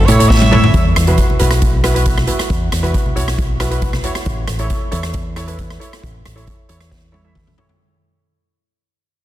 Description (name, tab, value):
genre	calypso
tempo	136 BPM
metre	4/4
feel	straight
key	A major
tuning	A4 = 440 Hz
part	bright alto saxophone	second line	0.0-0.7 s	C#5 to E5	-19 LUFS	right 2 dB	digital delay
part	fingered electric bass with an envelope filter	bass	0.0-7.5 s	A1 to A2	-16 LUFS	equal	none
part	steel pan	accompaniment	0.1-7.8 s	E4 to E5	-21 LUFS	right 1 dB	none
part	street-band drum kit	drums	0.1-7.8 s	hi-hat, kick drum, rim click, snare drum, toms	-16 LUFS	equal	soft clipping on snare
part	congas	percussion	0.1-4.2 s	none	-23 LUFS	right 1 dB	none
room	light reverb, small room ambience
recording	dense, heavily limited modern master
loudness	-13 LUFS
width	side -13 dB against mid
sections	0.7-7.8 A section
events	drum fill 0.3-0.7, 6.9-7.8; fade-out 0.7-7.8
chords	0.0 A; 0.7 Esus2; 4.3 A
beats	0.30 | 0.74 1.18 1.61 2.06 | 2.50 2.94 3.38 3.82 | 4.26 4.70 5.15 5.59 | 6.03 6.47 6.92 7.36